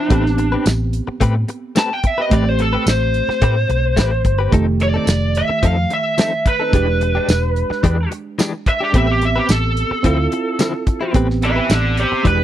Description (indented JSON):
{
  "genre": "straight-eighth soul blues",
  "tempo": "109 BPM",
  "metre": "4/4",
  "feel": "straight",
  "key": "A minor",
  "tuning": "A4 = 440 Hz",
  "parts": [
    { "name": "lead guitar through a small cranked amp", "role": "melody", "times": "0.0-12.4 s", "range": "D4 to A5", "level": "-19 LUFS", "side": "equal", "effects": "overdrive" },
    { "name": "reed electric piano", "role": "accompaniment", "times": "0.0-12.4 s", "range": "Eb3 to G4", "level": "-23 LUFS", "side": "right 5 dB", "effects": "none" },
    { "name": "direct-recorded clean electric guitar", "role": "stabs", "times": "0.0-12.4 s", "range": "D3 to B4", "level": "-22 LUFS", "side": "left 5 dB", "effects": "tremolo" },
    { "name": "vintage muted fingered electric bass", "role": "bass", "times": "0.1-12.4 s", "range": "E1 to A2", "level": "-18 LUFS", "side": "equal", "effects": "none" },
    { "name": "damped 70s drum kit", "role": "drums", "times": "0.1-12.4 s", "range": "hi-hat, kick drum, snare drum, tambourine", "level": "-17 LUFS", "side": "equal", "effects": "none" }
  ],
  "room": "small room ambience",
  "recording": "dry, close 1970s-style studio recording",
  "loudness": "-15 LUFS",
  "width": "side -12 dB against mid",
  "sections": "0.0-12.4 A section",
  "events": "none",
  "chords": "0.1 Am9; 4.5 F7; 6.7 E7#9; 8.9 Am9; 10.0 Dm9; 11.2 Am9",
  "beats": "| 0.11 0.66 1.21 1.76 | 2.32 2.87 3.42 3.98 | 4.53 5.08 5.63 6.18 | 6.74 7.29 7.84 8.39 | 8.94 9.50 10.05 10.60 | 11.15 11.70 12.25"
}